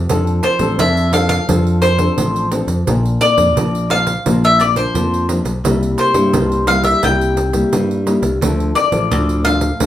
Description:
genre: samba and choro.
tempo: 86 BPM.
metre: 4/4.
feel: straight.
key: unclear.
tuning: A4 = 440 Hz.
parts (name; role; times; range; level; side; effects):
nylon-string guitar; accompaniment; 0.0-9.9 s; G2 to A4; -18 LUFS; left 1 dB; none.
modern bright picked electric bass; bass; 0.0-9.9 s; A1 to G2; -19 LUFS; equal; none.
pandeiro; percussion; 0.1-9.9 s; none; -22 LUFS; right 3 dB; none.
bowl-back mandolin; melody; 0.4-9.9 s; C5 to G5; -16 LUFS; left 1 dB; none.
room: wet studio reverb, RT60 0.6 s.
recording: band playing live in one room.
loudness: -13 LUFS.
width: side -12 dB against mid.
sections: 0.0-9.9 A section.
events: none.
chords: 0.1 Dm7; 2.9 Bb; 5.6 C7; 8.4 Dm.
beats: | 0.09 0.79 1.48 2.17 | 2.87 3.56 4.25 4.95 | 5.64 6.33 7.03 7.72 | 8.41 9.11 9.80.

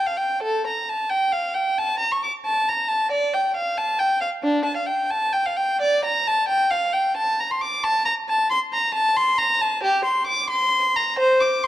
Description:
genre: classical, baroque-style suite movement for unaccompanied violin.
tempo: 90 BPM (dotted quarters).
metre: 12/8.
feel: rubato.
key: unclear.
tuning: A4 = 438 Hz.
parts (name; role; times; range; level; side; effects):
rich violin; solo; 0.0-11.7 s; D4 to D6; -19 LUFS; equal; none.
room: moderate recital hall reverb, RT60 1.5 s.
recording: dark, warm production.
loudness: -19 LUFS.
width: side -13 dB against mid.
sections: 0.0-11.7 A section.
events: none.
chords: none.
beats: | 0.43 1.11 1.78 2.45 | 3.11 3.77 4.44 5.11 | 5.81 6.49 7.16 7.83 | 8.49 9.16 9.82 10.50 | 11.18.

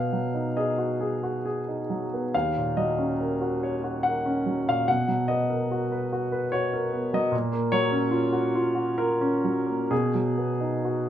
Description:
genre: neoclassical minimalist piano.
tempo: 71 BPM.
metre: 3/4.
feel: uneven beats, rubato.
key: unclear.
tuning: A4 = 440 Hz.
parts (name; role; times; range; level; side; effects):
clear baby grand piano; solo; 0.0-11.1 s; Eb2 to Gb5; -24 LUFS; equal; none.
room: light reverb.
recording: band playing live in one room.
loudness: -24 LUFS.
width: side -10 dB against mid.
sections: 0.0-11.1 A section.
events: none.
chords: 0.0 Abm7/Cb; 2.3 Ebm7; 4.9 Bmaj7; 7.3 Gbmaj7/Bb; 9.9 Abm7/Cb.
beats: 0.57 1.46 | 2.34 3.20 4.04 | 4.87 5.70 6.52 | 7.33 8.14 8.98 | 9.91 10.83.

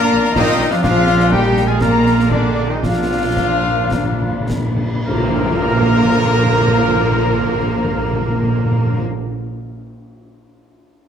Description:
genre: cinematic, heroic adventure film score.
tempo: 101-127 BPM.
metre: 4/4.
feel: straight.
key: Bb major.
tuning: A4 = 439 Hz.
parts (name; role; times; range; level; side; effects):
warm symphonic violin section; melody; 0.0-9.0 s; Bb4 to Bb5; -25 LUFS; left 5 dB; none.
clear oboe; second line; 0.0-9.0 s; Bb3 to Bb4; -26 LUFS; right 1 dB; none.
hollow concert flute; second line; 0.0-9.0 s; D5 to Bb5; -27 LUFS; left 2 dB; none.
warm studio violin section; second line; 0.0-9.0 s; Ab3 to F4; -27 LUFS; left 4 dB; none.
warm symphonic viola section; accompaniment; 0.0-9.0 s; D3 to F4; -24 LUFS; right 1 dB; none.
mellow French horn section; sustained chords; 0.0-9.0 s; D3 to G4; -23 LUFS; left 1 dB; none.
bright trumpet section; stabs; 0.0-9.0 s; D4 to Bb4; -22 LUFS; equal; none.
rich symphonic cello section; bass; 0.0-9.0 s; D3 to Bb3; -23 LUFS; right 2 dB; none.
warm symphonic double bass section; bass; 0.1-9.0 s; Bb1; -21 LUFS; right 3 dB; none.
concert snare drum, concert bass drum and clash cymbals; drums; 0.2-4.7 s; none; -24 LUFS; equal; none.
cymbal swell and tam-tam; percussion; 0.8-7.4 s; none; -28 LUFS; left 1 dB; none.
timpani; percussion; 0.8-9.1 s; Bb2; -22 LUFS; left 1 dB; none.
room: moderate scoring stage reverb, RT60 1.7 s.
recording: none.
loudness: -13 LUFS.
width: side -8 dB against mid.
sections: 0.0-5.1 A section; 5.1-9.8 B section.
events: slowing down 0.0-5.1; timpani fill 2.8-5.1; band accent 5.1-5.7.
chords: 0.0 Bb; 0.8 Bb7; 2.8 Bb.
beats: 0.36 | 0.84 1.32 1.81 2.32 | 2.84 3.38 3.92 4.49 | 5.08 5.68 6.27 6.87 | 7.46 8.06 8.65.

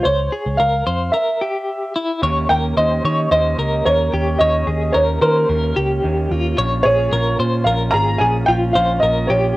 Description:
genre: indie pop.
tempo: 110 BPM.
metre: 4/4.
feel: straight.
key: unclear.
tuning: A4 = 440 Hz.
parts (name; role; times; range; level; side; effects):
warm upright piano; melody; 0.0-9.6 s; Bb4 to Bb5; -18 LUFS; right 1 dB; none.
semi-hollow electric guitar; arpeggios; 0.0-9.6 s; E4 to Db5; -22 LUFS; left 2 dB; tremolo.
vintage muted picked electric bass; bass; 0.1-9.5 s; Ab1 to Eb3; -20 LUFS; equal; none.
electric guitar through a small old amp; accompaniment; 2.2-9.6 s; Bb2 to G4; -26 LUFS; right 4 dB; none.
room: light reverb.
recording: home recording on cassette.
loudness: -15 LUFS.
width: side -18 dB against mid.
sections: 0.0-2.2 A section; 2.2-9.6 B section.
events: break 1.1-2.2.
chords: 0.0 Dbmaj7; 1.1 Edim; 2.2 Eb7; 6.6 Bbm.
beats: | 0.05 0.59 1.14 1.68 | 2.23 2.77 3.31 3.86 | 4.40 4.95 5.49 6.04 | 6.58 7.12 7.67 8.21 | 8.76 9.30.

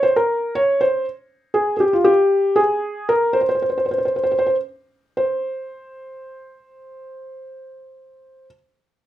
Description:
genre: turkish.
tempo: 234 BPM (eighths).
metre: 7/8.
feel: straight.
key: unclear.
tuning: A4 = 441 Hz.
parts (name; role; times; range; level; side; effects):
felt-muted upright piano; solo; 0.0-8.4 s; F4 to Db5; -17 LUFS; equal; slapback echo.
room: light reverb.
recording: rough home demo mix.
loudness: -17 LUFS.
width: side -13 dB against mid.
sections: 0.0-5.2 A section; 5.2-8.8 B section.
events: none.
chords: none.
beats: 0.04 0.30 0.55 0.81 1.06 1.32 | 1.58 1.83 2.09 2.35 2.60 2.86 3.12 | 3.37 3.63 3.88 4.14 4.40 4.65 4.91 | 5.17 5.42 5.68 5.93 6.19 6.45 6.70 | 6.96 7.21 7.47 7.73 7.98 8.24.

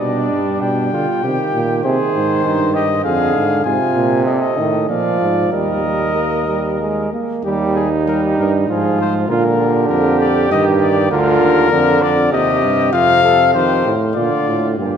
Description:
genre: classical, imitative canzona for brass ensemble.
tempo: 98 BPM.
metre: 3/4.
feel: straight.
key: Eb major from 3.7 s.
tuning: A4 = 440 Hz.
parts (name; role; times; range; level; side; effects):
mellow trumpet; melody; 0.0-14.7 s; G4 to Ab5; -19 LUFS; left 7 dB; none.
mellow flugelhorn; second line; 0.0-15.0 s; D4 to D5; -20 LUFS; right 5 dB; none.
clear trombone; accompaniment; 0.0-14.9 s; Bb2 to Bb3; -19 LUFS; right 2 dB; none.
warm bass trombone; bass; 0.0-15.0 s; D2 to D3; -19 LUFS; right 2 dB; none.
room: wet church reverb, RT60 3.0 s.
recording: none.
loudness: -13 LUFS.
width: side -8 dB against mid.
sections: 0.0-7.4 A section; 7.4-14.8 B section.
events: none.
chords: 0.0 G; 1.2 Cm; 1.8 Ab; 3.1 Ddim/F; 3.7 Fm/Ab; 4.3 Adim/C; 4.9 Bb; 5.5 Eb; 8.7 Fm/Ab; 9.3 Bb; 10.5 Eb/G; 11.1 Bb/D; 12.3 Cm/Eb; 12.9 F; 14.2 Bb.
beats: 0.62 1.24 | 1.85 2.46 3.05 | 3.66 4.27 4.90 | 5.53 6.17 6.80 | 7.44 8.07 8.68 | 9.29 9.90 10.51 | 11.11 11.71 12.33 | 12.94 13.54 14.16 | 14.79.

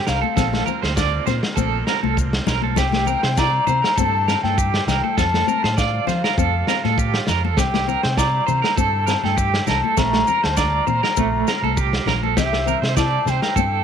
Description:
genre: highlife guitar band.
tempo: 100 BPM.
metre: 4/4.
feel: swing 54% on 16ths.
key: C mixolydian.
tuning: A4 = 440 Hz.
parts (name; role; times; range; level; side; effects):
mellow baroque flute; melody; 0.0-13.8 s; E5 to Bb5; -22 LUFS; left 4 dB; none.
combo organ; sustained chords; 0.0-13.8 s; Bb3 to Bb5; -34 LUFS; right 1 dB; none.
electric guitar at the edge of break-up; arpeggios; 0.0-13.8 s; A3 to D5; -23 LUFS; right 16 dB; tremolo, tape echo.
flamenco guitar; accompaniment; 0.1-13.8 s; Bb3 to E4; -29 LUFS; left 15 dB; none.
fingered electric bass; bass; 0.1-13.8 s; Bb1 to F3; -24 LUFS; right 1 dB; none.
crunchy breakbeat drum kit; drums; 0.1-13.7 s; kick drum, snare drum; -24 LUFS; right 1 dB; none.
maracas; percussion; 0.1-13.7 s; none; -33 LUFS; left 18 dB; none.
congas; percussion; 0.2-13.7 s; none; -28 LUFS; left 13 dB; none.
room: light reverb, small room ambience.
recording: 1960s-style stereo with parts hard left and right.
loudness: -17 LUFS.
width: side -8 dB against mid.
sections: 0.0-13.8 A section.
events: none.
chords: 0.4 Bbsus2; 2.8 C; 5.2 F; 7.6 C; 10.0 Bbsus2; 12.4 C.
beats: | 0.37 0.97 1.57 2.17 | 2.77 3.38 3.98 4.58 | 5.18 5.78 6.38 6.98 | 7.58 8.18 8.78 9.38 | 9.97 10.57 11.17 11.77 | 12.37 12.97 13.57.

